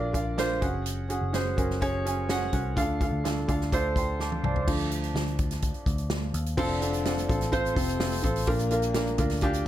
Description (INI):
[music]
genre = piano-driven pop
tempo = 126 BPM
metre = 4/4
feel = straight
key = unclear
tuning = A4 = 436 Hz
[part]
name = felt-muted upright piano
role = accompaniment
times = 0.0-9.7 s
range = Bb2 to D6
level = -28 LUFS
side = right 1 dB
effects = none
[part]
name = vintage muted picked electric bass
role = bass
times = 0.0-9.6 s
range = F1 to Eb2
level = -30 LUFS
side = equal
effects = none
[part]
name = natural country drum kit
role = drums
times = 0.1-9.7 s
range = crash cymbal, hi-hat, kick drum, snare drum, toms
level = -30 LUFS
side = equal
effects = none
[part]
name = mellow French horn section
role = second line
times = 6.6-9.4 s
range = Bb2 to D4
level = -33 LUFS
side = left 4 dB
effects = none
[sound]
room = light reverb, small room ambience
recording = none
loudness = -25 LUFS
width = side -12 dB against mid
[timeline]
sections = 0.0-4.7 A section; 4.7-6.6 B section; 6.6-9.7 C section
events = drum fill 4.2-4.7; felt piano solo 4.7-6.6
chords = 0.0 Bb; 0.6 Gbsus2; 2.8 Dm; 6.6 F; 8.5 Bb